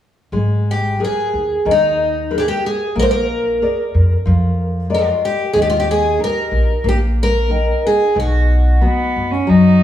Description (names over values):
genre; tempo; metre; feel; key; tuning
fado-style ballad; 92 BPM; 4/4; rubato; unclear; A4 = 440 Hz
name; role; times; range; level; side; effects
nylon-string guitar; accompaniment; 0.3-9.8 s; B2 to G5; -18 LUFS; left 3 dB; none
upright bass; bass; 0.3-9.8 s; G#1 to F#2; -17 LUFS; equal; none
picked twelve-string acoustic guitar; melody; 0.7-9.1 s; D#4 to B#4; -18 LUFS; right 1 dB; none
warm cello; second line; 8.8-9.8 s; B3 to D#4; -20 LUFS; right 4 dB; none
room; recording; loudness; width
moderate large studio reverb, RT60 1.1 s; band playing live in one room, small room ambience; -14 LUFS; side -11 dB against mid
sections
0.3-9.8 A section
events
none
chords
0.3 G#madd9; 3.0 A#7; 5.5 D#; 8.2 B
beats
| 0.32 1.00 1.66 2.31 | 2.96 3.61 4.26 4.90 | 5.54 6.19 6.84 7.49 | 8.15 8.82 9.48